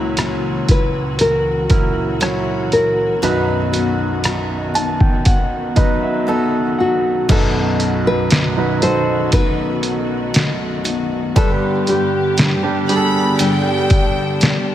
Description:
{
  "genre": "pop ballad",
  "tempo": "59 BPM",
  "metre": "4/4",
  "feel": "straight",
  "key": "unclear",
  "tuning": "A4 = 436 Hz",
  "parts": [
    { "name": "clear baby grand piano", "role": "accompaniment", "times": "0.0-14.7 s", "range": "B1 to A5", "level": "-20 LUFS", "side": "right 3 dB", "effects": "none" },
    { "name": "warm studio string section", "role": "sustained chords", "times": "0.0-14.7 s", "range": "C#2 to G4", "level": "-24 LUFS", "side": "equal", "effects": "none" },
    { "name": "picked steel-string acoustic guitar", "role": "arpeggios", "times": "0.0-14.7 s", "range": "G2 to G4", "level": "-23 LUFS", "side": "left 6 dB", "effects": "tape echo" },
    { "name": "trip hop sampler-style drum kit", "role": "drums", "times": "0.2-14.7 s", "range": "crash cymbal, hi-hat, kick drum, rim click, snare drum", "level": "-17 LUFS", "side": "equal", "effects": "none" },
    { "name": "nylon-string guitar", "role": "melody", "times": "0.7-13.4 s", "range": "F#4 to C5", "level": "-20 LUFS", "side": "left 1 dB", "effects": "none" },
    { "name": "warm studio violin section", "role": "second line", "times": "12.9-14.7 s", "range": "G5 to B5", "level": "-22 LUFS", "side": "left 1 dB", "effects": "none" }
  ],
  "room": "light reverb, studio reverb",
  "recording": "none",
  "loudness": "-14 LUFS",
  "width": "side -12 dB against mid",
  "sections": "0.0-7.3 A section; 7.3-14.7 B section",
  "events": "grand piano fill 4.2-7.3",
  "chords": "0.0 F#7/C#; 3.2 B; 11.4 G"
}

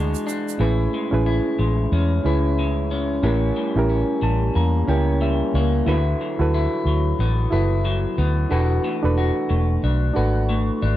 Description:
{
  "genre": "indie pop, bedroom pop",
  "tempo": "91 BPM",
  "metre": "4/4",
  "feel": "swing 60% on 16ths",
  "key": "A major",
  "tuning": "A4 = 445 Hz",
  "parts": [
    { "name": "electric guitar through a small old amp", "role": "accompaniment", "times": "0.0-11.0 s", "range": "A2 to F#4", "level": "-25 LUFS", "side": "left 3 dB", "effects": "lush chorus, warbly pitch drift" },
    { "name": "reed electric piano", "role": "accompaniment", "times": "0.0-11.0 s", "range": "C#4 to Bb5", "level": "-24 LUFS", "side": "right 3 dB", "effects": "none" },
    { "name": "vintage muted fingered electric bass", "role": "bass", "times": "0.0-11.0 s", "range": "E1 to E2", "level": "-20 LUFS", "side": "equal", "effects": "none" },
    { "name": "tube shaker", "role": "percussion", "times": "0.1-0.6 s", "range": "none", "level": "-36 LUFS", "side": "right 18 dB", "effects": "none" }
  ],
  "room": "little or no reverb",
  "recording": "dry, close 1970s-style studio recording",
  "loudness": "-18 LUFS",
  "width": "side -13 dB against mid",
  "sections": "0.6-11.0 A section",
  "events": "reed electric piano fill 3.9-5.9",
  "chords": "0.0 E9; 0.6 Amaj7; 3.2 A7b9; 5.9 D69; 8.5 E9sus4"
}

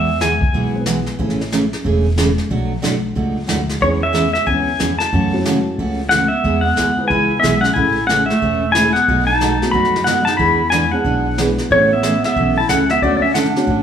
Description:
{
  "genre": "country, western swing",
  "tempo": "183 BPM",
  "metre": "4/4",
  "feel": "swing 62% on 8ths",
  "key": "A major",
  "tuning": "A4 = 440 Hz",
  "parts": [
    { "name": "pedal steel guitar", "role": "melody", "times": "0.0-0.8, 3.8-13.8 s", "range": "C#5 to B5", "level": "-16 LUFS", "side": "left 1 dB", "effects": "none" },
    { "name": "picked steel-string acoustic guitar", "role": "accompaniment", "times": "0.0-13.8 s", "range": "B2 to A4", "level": "-21 LUFS", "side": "right 3 dB", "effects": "none" },
    { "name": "upright bass", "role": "bass", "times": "0.0-13.8 s", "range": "E1 to F#2", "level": "-22 LUFS", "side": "equal", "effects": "none" },
    { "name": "jazz brush drum kit", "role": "drums", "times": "0.2-13.8 s", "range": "brushed snare drum, hi-hat, kick drum, snare drum", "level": "-24 LUFS", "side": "left 2 dB", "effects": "none" },
    { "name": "dark upright piano", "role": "accompaniment", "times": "0.7-1.4, 3.8-7.1, 9.6-13.7 s", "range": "G#3 to B4", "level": "-23 LUFS", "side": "equal", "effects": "none" },
    { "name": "breathy clarinet", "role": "second line", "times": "6.1-13.8 s", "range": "A3 to F#4", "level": "-22 LUFS", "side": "right 2 dB", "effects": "none" }
  ],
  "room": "wet stone room reverb, RT60 1.2 s",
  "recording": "band playing live in one room, studio reverb",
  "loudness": "-14 LUFS",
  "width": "side -8 dB against mid",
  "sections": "0.0-13.8 A section",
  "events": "none",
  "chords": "0.0 E; 1.2 Amaj7; 2.5 Bm7; 3.8 E6; 5.1 F#m7; 6.4 E; 7.8 Amaj7; 9.1 B7; 10.4 E7; 11.7 Aadd9; 13.0 Dmaj7"
}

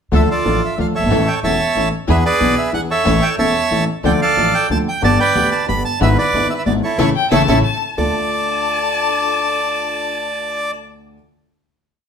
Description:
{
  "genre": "tango",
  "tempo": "183 BPM",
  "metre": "3/4",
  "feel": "rubato",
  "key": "D harmonic minor",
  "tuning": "A4 = 440 Hz",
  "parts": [
    { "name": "bandoneon", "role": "melody", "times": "0.1-10.7 s", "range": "E4 to B5", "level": "-17 LUFS", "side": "right 2 dB", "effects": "none" },
    { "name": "warm baby grand piano", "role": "accompaniment", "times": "0.1-11.1 s", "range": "E1 to A4", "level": "-19 LUFS", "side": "left 2 dB", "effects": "none" },
    { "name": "dark studio string section", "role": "stabs", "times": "0.1-10.7 s", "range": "C#4 to B4", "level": "-26 LUFS", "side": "left 2 dB", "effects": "none" },
    { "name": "upright bass", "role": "bass", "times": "0.1-8.1 s", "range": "E1 to E2", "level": "-21 LUFS", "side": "right 1 dB", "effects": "none" },
    { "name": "archtop guitar, miked and amplified", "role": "second line", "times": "7.0-11.1 s", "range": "E4 to C#5", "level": "-22 LUFS", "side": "left 1 dB", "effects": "none" },
    { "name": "rich violin", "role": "second line", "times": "7.2-10.7 s", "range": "G5 to A5", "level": "-22 LUFS", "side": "left 7 dB", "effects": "none" }
  ],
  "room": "wet studio reverb, RT60 0.9 s",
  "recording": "band playing live in one room",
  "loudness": "-14 LUFS",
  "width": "side -7 dB against mid",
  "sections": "0.1-8.0 variation; 8.0-10.0 final chord",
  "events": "band accent 7.0-8.0",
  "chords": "0.1 Dm; 1.1 A; 2.1 E7; 3.1 A; 4.0 Dm; 5.0 G; 6.0 E7/G#; 7.0 A; 8.0 Dm"
}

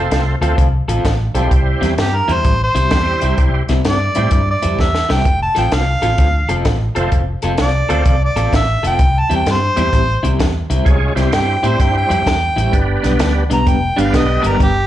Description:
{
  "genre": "electric blues shuffle",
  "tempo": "128 BPM",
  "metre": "4/4",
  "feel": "swing 66% on 8ths",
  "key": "C major",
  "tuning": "A4 = 440 Hz",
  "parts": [
    { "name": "overdriven tonewheel organ", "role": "accompaniment", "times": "0.0-14.6 s", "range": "G3 to Db5", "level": "-22 LUFS", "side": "right 4 dB", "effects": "slow rotary speaker, chorus vibrato, slapback echo" },
    { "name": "electric guitar through a small old amp", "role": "riff", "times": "0.0-14.7 s", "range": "G2 to A4", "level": "-21 LUFS", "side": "left 1 dB", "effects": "tremolo, slapback echo" },
    { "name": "vintage muted fingered electric bass", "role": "bass", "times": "0.0-14.8 s", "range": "F1 to A2", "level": "-17 LUFS", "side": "equal", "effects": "none" },
    { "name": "compact cocktail drum kit", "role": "drums", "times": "0.1-14.7 s", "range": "hi-hat, kick drum, snare drum", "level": "-18 LUFS", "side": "equal", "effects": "none" },
    { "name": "warm harmonica", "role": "melody", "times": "2.0-14.9 s", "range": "G4 to Bb5", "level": "-18 LUFS", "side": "equal", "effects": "overdrive, slapback echo" }
  ],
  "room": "small room ambience",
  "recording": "live gig heard through the venue's PA, club reverb, nothing above 11.0 kHz",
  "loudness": "-13 LUFS",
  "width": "side -12 dB against mid",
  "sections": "0.0-14.9 A section",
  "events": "harmonica solo 0.0-14.9; drum fill 4.8-5.3",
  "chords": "0.0 F; 1.5 C; 5.3 F; 9.0 C; 12.7 G"
}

